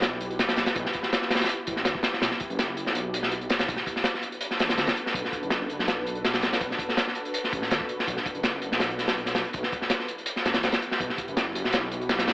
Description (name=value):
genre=drum and bass, jungle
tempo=164 BPM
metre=4/4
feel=straight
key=B minor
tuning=A4 = 442 Hz
part: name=ethereal airy pad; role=sustained chords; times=0.0-12.3 s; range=D4 to B4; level=-35 LUFS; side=equal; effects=ensemble chorus, built-in reverb
part: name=detuned saw bass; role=bass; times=0.0-12.3 s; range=F#1 to D2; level=-35 LUFS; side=equal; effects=tube saturation
part: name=crunchy breakbeat drum kit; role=drums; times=0.0-12.3 s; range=hi-hat, kick drum, snare drum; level=-25 LUFS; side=equal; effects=none
room=light reverb, small room ambience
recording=AM radio sound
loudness=-24 LUFS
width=side -26 dB against mid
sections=0.0-12.3 A section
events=kick drops out 3.0-3.7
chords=0.0 Emadd9; 3.7 Bm7; 9.5 Emadd9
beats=0.02 0.39 | 0.76 1.12 1.49 1.85 | 2.22 2.58 2.95 3.32 | 3.68 4.05 4.41 4.78 | 5.15 5.51 5.88 6.24 | 6.61 6.97 7.34 7.71 | 8.07 8.44 8.80 9.17 | 9.54 9.90 10.27 10.63 | 11.00 11.37 11.73 12.10